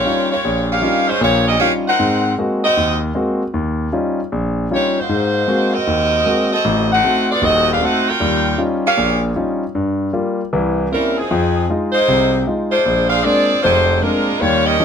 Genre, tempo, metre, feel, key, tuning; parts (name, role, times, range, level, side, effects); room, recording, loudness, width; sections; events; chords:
jazz; 154 BPM; 4/4; swing 65% on 8ths; Eb major; A4 = 440 Hz
edgy saxophone section; melody; 0.0-14.8 s; F3 to G5; -15 LUFS; equal
clear concert grand piano; accompaniment; 0.1-14.8 s; Eb1 to Gb4; -18 LUFS; left 1 dB
light reverb; close, detailed microphones; -14 LUFS; side -7 dB against mid
0.0-14.8 A section
0.0 Eb9; 2.0 Ab9; 3.5 Eb9; 5.1 Ab9; 6.6 Adim7; 8.2 Eb9; 9.7 Gm7; 10.5 C7b9; 11.3 Fm7; 12.9 Bb9